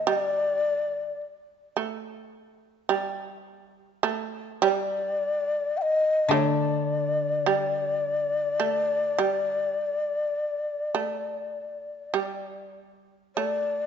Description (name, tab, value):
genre	japanese traditional, Japanese chamber music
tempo	52 BPM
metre	4/4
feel	rubato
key	unclear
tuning	A4 = 440 Hz
part	breathy mellow long shakuhachi	melody	0.0-13.9 s	D5 to G5	-26 LUFS	left 3 dB	none
part	shamisen	second line	0.0-13.9 s	G3 to A3	-28 LUFS	right 8 dB	none
part	koto	accompaniment	0.0-9.7 s	D3	-28 LUFS	left 4 dB	none
room	light reverb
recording	nothing above 7.9 kHz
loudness	-24 LUFS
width	side -7 dB against mid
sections	0.0-13.9 A section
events	none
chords	none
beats	| 0.05 1.20 2.34 3.48 | 4.61 5.74 6.88 8.02 | 9.18 10.35 11.54 12.75